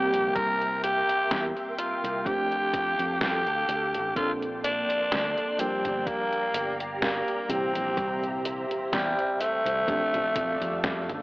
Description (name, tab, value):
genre	vaporwave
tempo	63 BPM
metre	4/4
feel	swing 54% on 16ths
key	F major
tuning	A4 = 440 Hz
part	raspy tenor saxophone	melody	0.0-11.2 s	G3 to Bb4	-27 LUFS	equal	tape echo
part	mellow FM electric piano	accompaniment	0.0-11.2 s	Bb2 to A4	-33 LUFS	equal	tremolo, wide subtle chorus, tape echo
part	soft string machine	sustained chords	0.0-11.2 s	Bb3 to D6	-34 LUFS	equal	phaser, ensemble chorus
part	fingered electric bass	bass	0.0-11.2 s	G1 to C3	-37 LUFS	equal	none
part	detuned 8-bit digital drum machine	drums	0.1-11.2 s	hi-hat, snare drum, toms	-32 LUFS	equal	overdrive, gated reverb
part	electronic kick drum	drums	0.4-10.6 s	none	-38 LUFS	equal	overdrive
room	light reverb, digital ambience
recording	cassette tape, AM radio sound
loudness	-24 LUFS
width	side -22 dB against mid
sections	0.0-11.2 A section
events	drum fill 9.9-11.2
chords	0.0 C7; 2.3 F69; 4.2 Bbmaj9; 5.6 Gm7; 7.5 C7; 9.9 F69